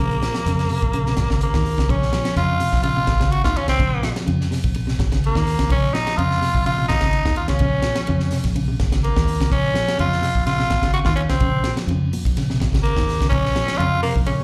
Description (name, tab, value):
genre	afrobeat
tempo	126 BPM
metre	4/4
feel	swing 53% on 16ths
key	Bb minor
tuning	A4 = 441 Hz
part	raspy tenor saxophone	melody	0.0-14.4 s	Bb3 to Gb4	-25 LUFS	equal	slapback echo
part	electric guitar at the edge of break-up	arpeggios	0.0-14.4 s	Bb2 to F3	-27 LUFS	equal	slapback echo
part	fingered electric bass	bass	0.0-14.4 s	Ab1 to F2	-24 LUFS	equal	none
part	tight funk drum kit	drums	0.1-14.4 s	hi-hat, kick drum, ride cymbal, snare drum	-27 LUFS	equal	none
room	small room ambience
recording	live gig heard through the venue's PA, club reverb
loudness	-20 LUFS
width	mono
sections	0.0-1.9 A section; 1.9-14.4 A section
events	none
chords	0.0 Bbm9